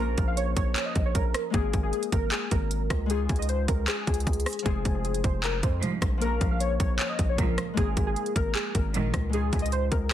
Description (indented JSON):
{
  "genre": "hip hop, trap",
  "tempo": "154 BPM",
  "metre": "4/4",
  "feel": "half-time",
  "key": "unclear",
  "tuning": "A4 = 440 Hz",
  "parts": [
    { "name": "warbly lo-fi synth keys", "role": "melody", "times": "0.0-10.1 s", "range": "Ab4 to F5", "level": "-31 LUFS", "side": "equal", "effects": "chorus" },
    { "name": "Celtic harp", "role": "accompaniment", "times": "0.0-10.1 s", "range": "F3 to Bb4", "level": "-35 LUFS", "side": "left 6 dB", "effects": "none" },
    { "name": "distorted 808-style bass", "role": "bass", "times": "0.0-10.1 s", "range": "F1 to F2", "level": "-29 LUFS", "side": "equal", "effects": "distortion" },
    { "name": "trap drum kit", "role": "drums", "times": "0.2-10.1 s", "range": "handclaps, hi-hat, kick drum, rim click", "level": "-27 LUFS", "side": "equal", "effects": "none" },
    { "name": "warm studio string section", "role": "stabs", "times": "5.8-9.2 s", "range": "Bb1 to F3", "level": "-33 LUFS", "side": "right 3 dB", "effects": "ping-pong delay" }
  ],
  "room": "digital ambience",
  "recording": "dense, heavily limited modern master",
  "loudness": "-24 LUFS",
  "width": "side -11 dB against mid",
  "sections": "0.0-10.1 A section",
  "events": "none",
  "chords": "0.0 Bbm; 1.5 Absus2; 3.1 Dbadd9; 4.7 Fm; 6.2 Bbm; 7.8 Absus2; 9.3 Dbadd9",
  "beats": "0.37 0.76 1.15 | 1.54 1.93 2.32 2.71 | 3.10 3.49 3.88 4.27 | 4.66 5.05 5.44 5.83 | 6.21 6.61 7.00 7.38 | 7.77 8.16 8.55 8.94 | 9.33 9.72 10.11"
}